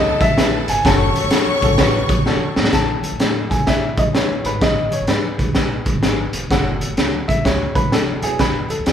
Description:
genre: uptempo 1960s-style soul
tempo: 127 BPM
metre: 4/4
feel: swing 65% on 8ths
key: unclear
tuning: A4 = 440 Hz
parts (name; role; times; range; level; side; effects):
- warm grand piano; melody; 0.0-8.9 s; G#4 to A5; -22 LUFS; equal; none
- warm studio violin section; second line; 0.0-2.7 s; A4 to C#6; -22 LUFS; left 2 dB; none
- warm upright piano; accompaniment; 0.0-8.9 s; D#3 to B4; -26 LUFS; left 3 dB; none
- upright bass; bass; 0.0-8.9 s; E1 to A2; -26 LUFS; equal; none
- crunchy breakbeat drum kit; drums; 0.2-8.9 s; hi-hat, kick drum, snare drum; -17 LUFS; equal; none
- congas; percussion; 0.2-8.9 s; none; -35 LUFS; right 2 dB; none
room: moderate large studio reverb, RT60 1.1 s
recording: band playing live in one room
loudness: -15 LUFS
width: side -9 dB against mid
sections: 0.0-2.7 A section; 2.7-8.9 B section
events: drum fill 2.3-2.7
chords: 0.0 A; 0.8 F#m; 2.7 A; 4.4 G#m; 6.5 F#m; 8.2 Eadd9

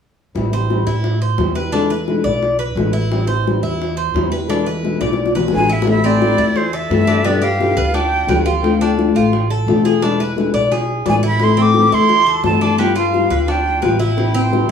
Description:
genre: latin, Cuban son and guajira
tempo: 174 BPM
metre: 4/4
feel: straight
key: A minor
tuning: A4 = 436 Hz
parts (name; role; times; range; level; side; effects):
- fingerpicked old ladder-braced acoustic guitar; accompaniment; 0.3-14.7 s; B2 to G4; -18 LUFS; left 5 dB; none
- upright bass; bass; 0.4-14.7 s; E1 to A2; -21 LUFS; right 1 dB; none
- bongos; percussion; 0.4-14.7 s; none; -22 LUFS; left 3 dB; none
- Cuban tres; arpeggios; 0.5-14.7 s; B3 to D5; -22 LUFS; right 2 dB; none
- breathy jazz flute; melody; 5.6-8.5, 11.1-14.0 s; C5 to D6; -18 LUFS; right 2 dB; tape echo
room: moderate studio reverb, RT60 0.6 s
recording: studio ambience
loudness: -14 LUFS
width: side -7 dB against mid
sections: 0.3-5.9 A section; 5.9-14.7 B section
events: drum fill 5.0-5.9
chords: 0.3 Am7; 1.7 E7; 3.1 Am7; 4.5 E7; 5.9 Am; 7.2 G; 8.6 Dm7; 10.0 E7; 11.4 Am; 12.8 G7; 14.2 Amadd9

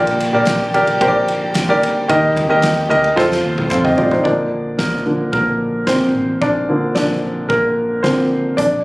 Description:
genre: piano-driven pop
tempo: 111 BPM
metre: 4/4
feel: straight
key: Bb major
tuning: A4 = 440 Hz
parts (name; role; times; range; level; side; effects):
- warm grand piano; accompaniment; 0.0-8.8 s; Bb2 to F5; -14 LUFS; equal; none
- warm studio string section; sustained chords; 0.0-4.2 s; C3 to G4; -26 LUFS; equal; none
- vintage muted fingered electric bass; bass; 0.0-8.8 s; A1 to F2; -26 LUFS; equal; none
- loose indie drum kit; drums; 0.1-8.7 s; hi-hat, kick drum, ride cymbal, snare drum, toms; -23 LUFS; equal; none
- group handclap; percussion; 0.5-3.8 s; none; -29 LUFS; left 1 dB; none
room: moderate large studio reverb, RT60 1.2 s, small room ambience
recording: recorded on a phone in the room, club reverb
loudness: -14 LUFS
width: side -21 dB against mid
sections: 0.0-4.3 A section; 4.3-8.8 B section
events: drum fill 3.2-4.3; grand piano solo 4.3-8.8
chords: 0.0 Gm/Bb; 2.1 Eb; 3.2 F; 4.3 Bb

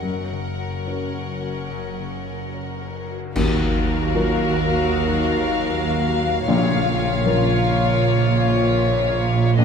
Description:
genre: cinematic, emotional film score for orchestra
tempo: 71-78 BPM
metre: 4/4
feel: rubato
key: Eb minor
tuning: A4 = 441 Hz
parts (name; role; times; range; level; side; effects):
- dark studio violin section; melody; 0.0-9.6 s; F5 to F#5; -29 LUFS; left 6 dB; none
- warm studio violin section; second line; 0.0-9.6 s; A#4 to Eb5; -27 LUFS; left 4 dB; none
- felt-muted upright piano; accompaniment; 0.0-9.6 s; Bb1 to Bb4; -26 LUFS; left 3 dB; none
- rich studio viola section; accompaniment; 0.0-9.6 s; Db4 to Gb4; -27 LUFS; right 1 dB; none
- concert harp; arpeggios; 0.0-9.6 s; Gb2 to Bb5; -28 LUFS; left 5 dB; none
- rich studio cello section; bass; 0.0-9.6 s; Eb2 to Bb2; -26 LUFS; right 3 dB; none
- warm studio double bass section; bass; 0.0-9.6 s; Gb1 to Eb2; -26 LUFS; right 5 dB; none
- cymbal swell, clash cymbals and concert bass drum; percussion; 0.0-4.9 s; none; -29 LUFS; equal; none
- timpani; percussion; 6.5-7.6 s; Bb2; -29 LUFS; equal; none
room: wet scoring stage reverb, RT60 1.5 s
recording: none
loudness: -18 LUFS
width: side -6 dB against mid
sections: 0.0-3.4 A section; 3.4-9.6 A section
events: band accent 3.4-4.1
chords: 0.0 Gb; 3.4 Ebmadd9; 6.5 Bbm

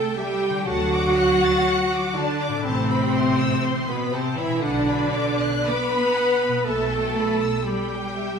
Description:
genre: cinematic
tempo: 60 BPM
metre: 4/4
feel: rubato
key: A dorian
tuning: A4 = 440 Hz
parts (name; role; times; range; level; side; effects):
- rich studio violin section; melody; 0.0-8.4 s; E5 to A6; -31 LUFS; left 2 dB; none
- dark clarinet; second line; 0.0-8.4 s; B3 to B4; -25 LUFS; equal; none
- warm studio violin section; second line; 0.0-8.4 s; B4 to B5; -29 LUFS; left 3 dB; none
- rich studio viola section; accompaniment; 0.0-8.4 s; B3 to B4; -27 LUFS; right 2 dB; none
- concert harp; arpeggios; 0.0-8.4 s; A2 to B5; -32 LUFS; left 6 dB; none
- clear studio cello section; bass; 0.0-8.4 s; B2 to B3; -27 LUFS; right 2 dB; none
- rich studio double bass section; bass; 0.7-7.5 s; A1 to D2; -29 LUFS; right 3 dB; none
room: moderate scoring stage reverb, RT60 1.5 s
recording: minimal, uncompressed stereo recording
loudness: -20 LUFS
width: side -6 dB against mid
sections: 0.0-8.4 A section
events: none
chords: 0.0 C6; 0.7 D; 2.7 Amadd9; 4.6 Bm; 6.7 Em/B

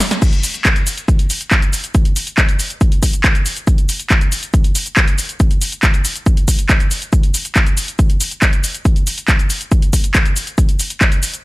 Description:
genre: trance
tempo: 139 BPM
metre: 4/4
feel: straight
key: none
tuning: none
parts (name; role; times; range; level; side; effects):
- punchy analog drum machine; drums; 0.0-11.4 s; crash cymbal, handclaps, hi-hat, shaker, snare drum; -17 LUFS; equal; none
- electronic kick drum; drums; 0.2-11.1 s; none; -13 LUFS; equal; overdrive
room: little or no reverb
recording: none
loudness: -13 LUFS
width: side -20 dB against mid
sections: 0.2-11.4 A section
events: drum fill 0.0; drop 0.2-11.4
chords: none

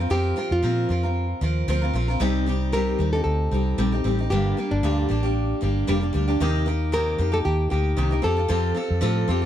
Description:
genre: acoustic pop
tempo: 114 BPM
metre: 4/4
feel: swing 55% on 16ths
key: unclear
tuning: A4 = 440 Hz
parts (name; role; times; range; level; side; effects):
- picked steel-string acoustic guitar; accompaniment; 0.0-9.5 s; G2 to Bb4; -25 LUFS; left 1 dB; none
- vintage muted fingered electric bass; bass; 0.0-9.5 s; F1 to Bb2; -23 LUFS; equal; none
- nylon-string guitar; melody; 0.1-9.5 s; D4 to Bb4; -27 LUFS; equal; none
room: little or no reverb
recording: dry, close 1970s-style studio recording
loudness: -20 LUFS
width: side -11 dB against mid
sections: 0.0-9.5 A section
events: none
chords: 0.0 Fsus4; 2.2 Cm; 4.3 Gm; 6.4 Eb6; 8.2 Fadd9

